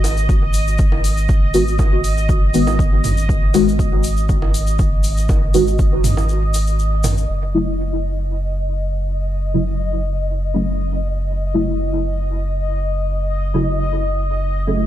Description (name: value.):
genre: dub techno.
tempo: 120 BPM.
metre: 4/4.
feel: straight.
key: unclear.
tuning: A4 = 440 Hz.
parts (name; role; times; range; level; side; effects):
soft dub sub bass; bass; 0.0-14.9 s; F#1 to G#1; -20 LUFS; equal; sidechain pumping.
electronic hi-hat; drums; 0.0-7.1 s; none; -31 LUFS; left 2 dB; low-pass filter on hats.
electronic bongos and toms; percussion; 0.0-7.1 s; none; -26 LUFS; right 3 dB; overdrive, sidechain pumping on perc, sidechain pumping on toms, dub echo.
tube shaker; percussion; 0.0-7.3 s; none; -31 LUFS; left 6 dB; none.
bubbling stepped-filter texture; texture; 0.0-14.9 s; D#5; -26 LUFS; equal; chorus, built-in reverb, sidechain pumping.
electronic kick drum; drums; 0.3-5.9 s; none; -17 LUFS; equal; none.
deep mellow chord stab; stabs; 1.5-14.8 s; C#3 to F#4; -20 LUFS; left 1 dB; chorus, phaser, dub echo.
room: light reverb.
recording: dark, warm production.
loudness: -16 LUFS.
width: side -12 dB against mid.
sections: 0.0-7.3 A section; 7.3-14.9 B section.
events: filter sweep on synth stab 0.0-7.3, 7.3-14.9; break 6.3-7.3.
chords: 0.0 G#5; 7.3 F#m7.